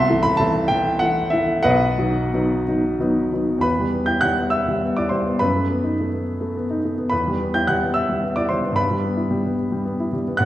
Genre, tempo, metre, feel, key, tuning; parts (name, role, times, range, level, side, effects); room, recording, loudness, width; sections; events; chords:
classical, romantic character piece for solo piano; 60-74 BPM (dotted quarters); 6/8; rubato; E minor; A4 = 441 Hz
warm baby grand piano; solo; 0.0-10.5 s; B1 to G6; -18 LUFS; equal
wet recital hall reverb, RT60 1.6 s; heard from further back in the room; -18 LUFS; side -14 dB against mid
0.0-3.6 A section; 3.6-10.5 B section
0.0 Am/C; 1.7 B; 3.6 Em; 5.4 B7/F#; 7.1 Em; 8.8 Em/G